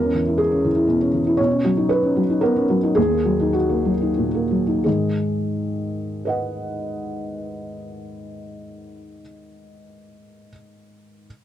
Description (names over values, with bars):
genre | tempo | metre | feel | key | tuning
neoclassical minimalist piano | 85-122 BPM | 3/4 | rubato | G# minor | A4 = 440 Hz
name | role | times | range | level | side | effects
felt-muted upright piano | solo | 0.0-11.3 s | D#2 to F#5 | -19 LUFS | equal | none
room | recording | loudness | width
light reverb | dry, close 1970s-style studio recording | -18 LUFS | side -11 dB against mid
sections
0.0-4.9 A section; 4.9-9.0 B section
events
slowing down 0.6-4.9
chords
0.0 E6; 1.4 Badd9; 3.0 D#m; 4.9 G#m7